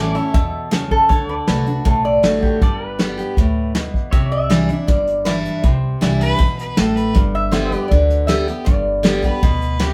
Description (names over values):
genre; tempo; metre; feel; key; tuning
honky-tonk and classic country; 159 BPM; 4/4; straight; G major; A4 = 440 Hz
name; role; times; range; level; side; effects
lap resonator guitar; melody; 0.0-9.2 s; G4 to E5; -22 LUFS; equal; none
picked steel-string acoustic guitar; accompaniment; 0.0-9.9 s; G2 to G4; -23 LUFS; equal; none
pedal steel guitar; sustained chords; 0.0-9.9 s; A4 to E5; -32 LUFS; equal; none
upright bass; bass; 0.0-9.9 s; G1 to E2; -25 LUFS; equal; none
vintage brush drum kit; drums; 0.2-9.9 s; hi-hat, kick drum, snare drum; -20 LUFS; equal; none
clear fiddle; second line; 6.2-9.9 s; G4 to B4; -26 LUFS; equal; none
room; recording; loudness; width
moderate studio reverb, RT60 0.6 s; band playing live in one room; -17 LUFS; mono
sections
0.0-4.1 A section; 4.1-9.9 B section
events
none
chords
0.0 A; 1.1 D; 2.6 G; 4.1 Cadd9; 7.2 G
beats
0.34 0.72 | 1.10 1.48 1.85 2.23 | 2.61 2.99 3.37 3.75 | 4.13 4.50 4.88 5.26 | 5.64 6.02 6.40 6.78 | 7.15 7.53 7.91 8.29 | 8.67 9.04 9.42 9.80